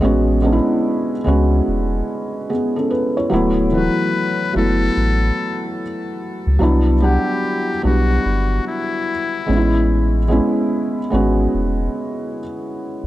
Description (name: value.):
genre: lo-fi hip hop.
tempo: 73 BPM.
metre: 4/4.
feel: swing 64% on 16ths.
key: A major.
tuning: A4 = 442 Hz.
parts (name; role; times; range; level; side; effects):
felt-muted upright piano; accompaniment; 0.0-13.1 s; E3 to F#5; -18 LUFS; equal; cassette tape.
warm sub bass; bass; 0.0-13.1 s; D1 to C#2; -17 LUFS; equal; none.
trumpet with metal mute; melody; 3.7-9.9 s; E4 to B4; -24 LUFS; left 4 dB; tape echo.
room: light reverb, studio ambience.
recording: dark, warm production.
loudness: -16 LUFS.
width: side -15 dB against mid.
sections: 0.0-13.1 A section.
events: none.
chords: 0.0 Amaj7; 3.3 D69; 6.6 Cmaj9#11; 9.5 Amaj7.